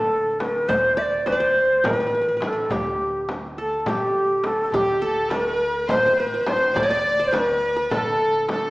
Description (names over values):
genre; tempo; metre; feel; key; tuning
Turkish makam ensemble; 208 BPM (eighths); 7/8; straight; D makam hicaz; A4 = 439 Hz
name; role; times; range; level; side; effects
breathy ney; melody; 0.0-8.7 s; G4 to E5; -20 LUFS; equal; none
qanun; second line; 0.0-8.7 s; G4 to Eb5; -28 LUFS; right 1 dB; none
upright bass; bass; 0.0-8.7 s; A1 to D3; -39 LUFS; equal; none
darbuka; percussion; 0.1-8.6 s; none; -37 LUFS; equal; none
frame drum; percussion; 0.4-8.6 s; none; -29 LUFS; left 1 dB; none
rich chamber violin section; second line; 4.7-8.7 s; G4 to D5; -27 LUFS; equal; none
room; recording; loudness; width
wet recital hall reverb, RT60 1.5 s; small speaker sound; -19 LUFS; side -20 dB against mid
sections
0.0-8.7 A section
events
none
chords
none